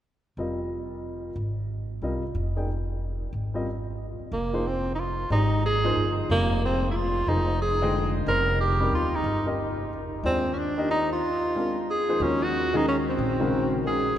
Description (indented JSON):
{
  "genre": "modal jazz",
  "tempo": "183 BPM",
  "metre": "3/4",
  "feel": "swing 63% on 8ths",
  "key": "F dorian",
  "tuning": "A4 = 440 Hz",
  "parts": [
    { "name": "warm baby grand piano", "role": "accompaniment", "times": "0.4-14.0 s", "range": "Db3 to G5", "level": "-29 LUFS", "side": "left 1 dB", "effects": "none" },
    { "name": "upright bass", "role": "bass", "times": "0.4-14.2 s", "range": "F1 to Eb2", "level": "-29 LUFS", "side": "equal", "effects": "none" },
    { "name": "warm tenor saxophone", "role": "melody", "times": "4.3-14.2 s", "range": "Bb3 to Bb4", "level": "-26 LUFS", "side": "right 1 dB", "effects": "none" }
  ],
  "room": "wet cathedral reverb, RT60 5.2 s",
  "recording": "recorded in a church or concert hall",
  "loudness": "-24 LUFS",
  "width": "side -11 dB against mid",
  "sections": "0.4-4.3 A section; 4.3-12.2 B section; 12.2-14.2 C section",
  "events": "none",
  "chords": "0.4 Fm9; 11.2 Bb7; 12.2 Ebm9",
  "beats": "| 0.38 0.71 1.04 | 1.37 1.70 2.02 | 2.35 2.68 3.01 | 3.34 3.67 4.00 | 4.33 4.66 4.99 | 5.31 5.64 5.97 | 6.30 6.63 6.96 | 7.29 7.61 7.94 | 8.27 8.60 8.93 | 9.26 9.58 9.91 | 10.24 10.57 10.90 | 11.22 11.55 11.88 | 12.21 12.54 12.87 | 13.19 13.52 13.85 | 14.18"
}